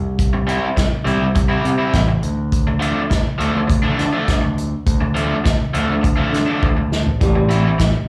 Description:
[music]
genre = indie rock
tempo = 102 BPM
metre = 4/4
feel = straight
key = unclear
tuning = A4 = 440 Hz
[part]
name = overdriven picked electric bass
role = bass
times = 0.0-7.9 s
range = A1 to D3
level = -22 LUFS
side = equal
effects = none
[part]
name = unplugged drum kit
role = drums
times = 0.2-7.9 s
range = hi-hat, kick drum, snare drum, toms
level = -22 LUFS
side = equal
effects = none
[part]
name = raw garage guitar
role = riff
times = 0.3-7.8 s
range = E3 to E4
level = -23 LUFS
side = equal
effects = overdrive, slapback echo
[part]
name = electric guitar through a small old amp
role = riff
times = 7.2-8.1 s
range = A2 to G3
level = -23 LUFS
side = equal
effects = subtle chorus, slapback echo
[sound]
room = studio ambience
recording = live gig heard through the venue's PA, club reverb, small room reverb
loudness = -18 LUFS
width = mono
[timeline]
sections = 0.0-8.1 A section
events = drum fill 6.6-7.2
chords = 0.0 C; 2.2 Dm; 7.2 Am7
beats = | 0.18 0.77 1.35 1.94 | 2.53 3.11 3.70 4.28 | 4.87 5.46 6.04 6.63 | 7.21 7.80

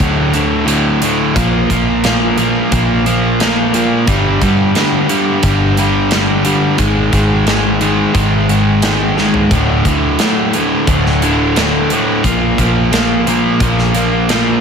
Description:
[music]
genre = quiet-loud alternative rock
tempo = 88 BPM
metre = 4/4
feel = straight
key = unclear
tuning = A4 = 438 Hz
[part]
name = overdriven electric guitar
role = riff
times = 0.0-14.6 s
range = D2 to Bb3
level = -12 LUFS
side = equal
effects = none
[part]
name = fingered electric bass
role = bass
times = 0.0-14.6 s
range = D1 to G2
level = -18 LUFS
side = equal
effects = none
[part]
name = big rock drum kit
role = drums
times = 0.0-14.5 s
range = hi-hat, kick drum, snare drum, toms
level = -18 LUFS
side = equal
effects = none
[sound]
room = light reverb, studio ambience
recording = none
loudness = -11 LUFS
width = side -6 dB against mid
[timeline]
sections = 0.0-14.6 A section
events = drum fill 9.2-9.5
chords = 0.0 D5; 1.4 Bb5; 4.1 G5; 6.8 G#5; 9.5 D5; 12.2 Bb5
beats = 0.01 0.68 | 1.36 2.04 2.72 3.40 | 4.08 4.76 5.43 6.12 | 6.79 7.47 8.15 8.84 | 9.52 10.20 10.88 11.56 | 12.24 12.92 13.60 14.28

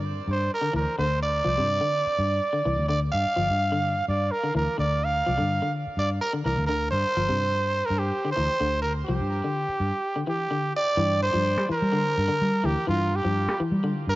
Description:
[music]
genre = afrobeat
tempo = 126 BPM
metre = 4/4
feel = straight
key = G dorian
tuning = A4 = 440 Hz
[part]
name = electric guitar at the edge of break-up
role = arpeggios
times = 0.0-14.0 s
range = C3 to F3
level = -31 LUFS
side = left 3 dB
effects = cassette tape
[part]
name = vintage muted fingered electric bass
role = bass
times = 0.0-14.2 s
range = G1 to G3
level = -27 LUFS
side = equal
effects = none
[part]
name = growling trumpet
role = melody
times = 0.3-14.2 s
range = F4 to F5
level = -25 LUFS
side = right 1 dB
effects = cassette tape, tape echo
[sound]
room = light reverb, studio ambience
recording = home recording on cassette, nothing above 7.7 kHz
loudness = -22 LUFS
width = side -17 dB against mid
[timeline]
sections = 0.0-11.0 A section; 11.0-14.2 B section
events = none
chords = 0.0 G5; 11.0 Gm7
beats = 0.04 0.52 0.99 | 1.47 1.94 2.42 2.89 | 3.37 3.85 4.32 4.80 | 5.27 5.75 6.22 6.70 | 7.18 7.65 8.13 8.60 | 9.08 9.55 10.03 10.51 | 10.98 11.46 11.93 12.41 | 12.88 13.36 13.84

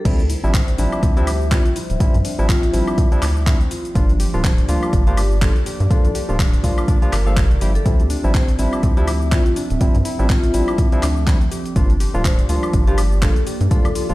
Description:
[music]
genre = deep house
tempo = 123 BPM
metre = 4/4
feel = swing 57% on 16ths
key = D minor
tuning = A4 = 436 Hz
[part]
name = dark analog pad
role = sustained chords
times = 0.0-14.1 s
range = F3 to E5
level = -29 LUFS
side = right 2 dB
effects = chorus, phaser, sidechain pumping
[part]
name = warbly dusty pluck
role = arpeggios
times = 0.0-14.0 s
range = C4 to F5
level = -29 LUFS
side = left 2 dB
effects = chorus, sidechain pumping, digital delay
[part]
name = barky tine electric piano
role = stabs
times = 0.0-14.1 s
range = F3 to A4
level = -25 LUFS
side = equal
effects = sidechain pumping, low-pass filter, ping-pong delay
[part]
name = vibraphone with medium mallets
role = melody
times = 0.1-13.9 s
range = F4 to C5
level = -28 LUFS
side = left 2 dB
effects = digital delay
[part]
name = rubbery square bass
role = bass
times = 0.1-14.1 s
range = D1 to G2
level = -19 LUFS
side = equal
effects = none
[part]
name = deep house drum kit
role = drums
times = 0.1-14.1 s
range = cabasa, crash cymbal, handclaps, hi-hat, woodblock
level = -28 LUFS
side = left 1 dB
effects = overdrive, low-pass filter on hats, low-pass filter on cymbals, low-pass filter on perc, low-pass filter on snare, low-pass filter on room
[part]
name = electronic kick drum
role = drums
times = 0.1-13.8 s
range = none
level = -17 LUFS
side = equal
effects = overdrive
[sound]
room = digital ambience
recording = played on a big sound system in a bare room, large studio reverb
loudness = -15 LUFS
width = side -18 dB against mid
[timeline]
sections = 0.1-14.1 A section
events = drop 0.1-14.1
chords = 0.1 Dm11; 3.7 Gm7; 7.9 Dm11; 11.5 Gm7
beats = | 0.05 0.54 1.03 1.51 | 2.00 2.49 2.98 3.47 | 3.95 4.44 4.93 5.42 | 5.91 6.39 6.88 7.37 | 7.86 8.35 8.83 9.32 | 9.81 10.30 10.78 11.27 | 11.76 12.25 12.73 13.22 | 13.71

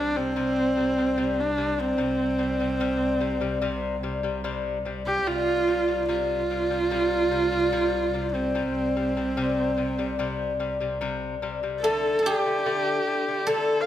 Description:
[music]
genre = mongolian traditional, Mongolian folk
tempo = 73 BPM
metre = 4/4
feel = straight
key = C zhi mode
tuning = A4 = 440 Hz
[part]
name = rich horsehead fiddle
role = melody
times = 0.0-13.9 s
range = C4 to F5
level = -25 LUFS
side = right 2 dB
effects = none
[part]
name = lute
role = arpeggios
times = 0.0-13.8 s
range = C3 to A3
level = -28 LUFS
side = left 5 dB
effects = none
[part]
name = muted double bass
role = drone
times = 0.0-11.9 s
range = C2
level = -34 LUFS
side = equal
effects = none
[part]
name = guzheng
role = second line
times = 11.8-13.9 s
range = G4 to A4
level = -28 LUFS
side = right 1 dB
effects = none
[sound]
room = moderate recital hall reverb, RT60 1.6 s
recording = none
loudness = -23 LUFS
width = side -11 dB against mid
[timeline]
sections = 0.0-11.8 A section; 11.8-13.9 B section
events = none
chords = 0.0 C5; 11.8 D5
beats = 0.36 1.18 | 1.99 2.81 3.63 4.45 | 5.27 6.09 6.91 7.73 | 8.55 9.37 10.19 11.01 | 11.83 12.66 13.48

